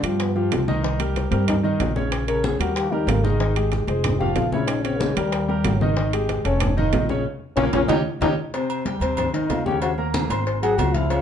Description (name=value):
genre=Afro-Cuban jazz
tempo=187 BPM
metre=4/4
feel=straight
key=unclear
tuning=A4 = 440 Hz
part: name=growling trombone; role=second line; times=0.0-11.2 s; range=G3 to Bb4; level=-25 LUFS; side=left 4 dB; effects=none
part: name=warm concert grand piano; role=accompaniment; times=0.0-11.2 s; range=C3 to C6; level=-24 LUFS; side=left 1 dB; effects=none
part: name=upright bass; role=bass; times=0.0-11.2 s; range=F1 to G2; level=-24 LUFS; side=right 1 dB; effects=none
part: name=bongos and cowbell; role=percussion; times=0.0-11.2 s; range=none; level=-33 LUFS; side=left 4 dB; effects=none
part: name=timbales and agogo bells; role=percussion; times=0.0-11.2 s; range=none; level=-30 LUFS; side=right 7 dB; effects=none
part: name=congas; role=percussion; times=0.2-11.2 s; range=none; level=-29 LUFS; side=left 1 dB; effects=none
room=moderate studio reverb, RT60 0.8 s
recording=nothing above 10.6 kHz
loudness=-19 LUFS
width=side -8 dB against mid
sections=0.0-8.5 A section; 8.5-11.2 A section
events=trombone solo 0.0-11.2; drum fill 7.3-8.5; band accent 7.3-8.5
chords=0.0 G5; 0.8 Cm7; 2.1 Bbm; 2.8 Eb; 3.4 Abmaj7; 4.0 Fm; 4.7 Bbm; 5.3 Eb; 6.0 Ab5; 6.6 Faug7; 7.3 Bbm; 7.9 Eb7; 8.5 Eb13; 9.8 Eb5; 10.5 Ab7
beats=0.20 0.52 | 0.84 1.16 1.48 1.80 | 2.12 2.44 2.76 3.08 | 3.40 3.72 4.04 4.37 | 4.68 5.01 5.33 5.65 | 5.97 6.29 6.61 6.93 | 7.25 7.57 7.89 8.21 | 8.54 8.86 9.18 9.50 | 9.82 10.14 10.46 10.79 | 11.11